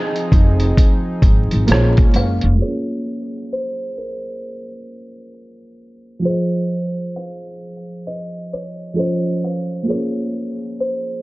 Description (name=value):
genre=lo-fi hip hop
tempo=66 BPM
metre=4/4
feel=swing 63% on 16ths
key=Bb minor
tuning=A4 = 441 Hz
part: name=buzzing kalimba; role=melody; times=0.0-11.2 s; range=Bb4 to F5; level=-27 LUFS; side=equal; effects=low-pass filter, analog delay
part: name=felt-muted upright piano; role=accompaniment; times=0.0-11.2 s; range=F3 to Eb5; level=-23 LUFS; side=right 1 dB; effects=cassette tape, low-pass filter
part: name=warm analog pad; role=sustained chords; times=0.0-2.6 s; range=F3 to Ab4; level=-24 LUFS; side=equal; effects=chorus, low-pass filter
part: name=lo-fi sampler-style drum kit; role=drums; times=0.2-2.6 s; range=hi-hat, kick drum, rim click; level=-14 LUFS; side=equal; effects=vintage 12-bit sampler grit
part: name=upright bass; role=bass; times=0.3-2.6 s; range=F1 to Bb1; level=-16 LUFS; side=equal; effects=none
room=light reverb, studio ambience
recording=dark, warm production, vinyl crackle, low-pass filter, nothing above 7.7 kHz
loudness=-16 LUFS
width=side -21 dB against mid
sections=0.0-2.6 A section; 2.6-11.2 B section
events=filter sweep 2.6-11.2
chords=0.0 Fm7; 1.7 Bbm9; 2.6 Bbm7; 6.2 Fm7; 9.0 F7b13; 9.9 Bbm7